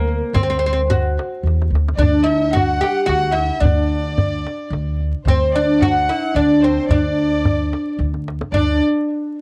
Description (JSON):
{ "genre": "Persian modal ensemble", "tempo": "110 BPM", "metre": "3/4", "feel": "straight", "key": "D dastgah homayun", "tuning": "A4 = 445 Hz", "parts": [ { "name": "oud", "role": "melody", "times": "0.0-8.8 s", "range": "Bb3 to G4", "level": "-20 LUFS", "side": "equal", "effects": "none" }, { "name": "upright bass", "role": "bass", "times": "0.0-8.8 s", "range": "D2 to Eb2+45c", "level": "-22 LUFS", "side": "equal", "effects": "none" }, { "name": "tombak", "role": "percussion", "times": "0.1-8.8 s", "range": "none", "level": "-23 LUFS", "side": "equal", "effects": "none" }, { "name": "rich chamber violin section", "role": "second line", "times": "2.0-8.8 s", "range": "C5 to F#5", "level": "-28 LUFS", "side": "equal", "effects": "none" } ], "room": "little or no reverb", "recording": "dry, close 1970s-style studio recording, vinyl crackle", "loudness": "-18 LUFS", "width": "mono", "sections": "0.0-8.5 A section", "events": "drum fill 1.4-2.0, 8.0-8.5", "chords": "none" }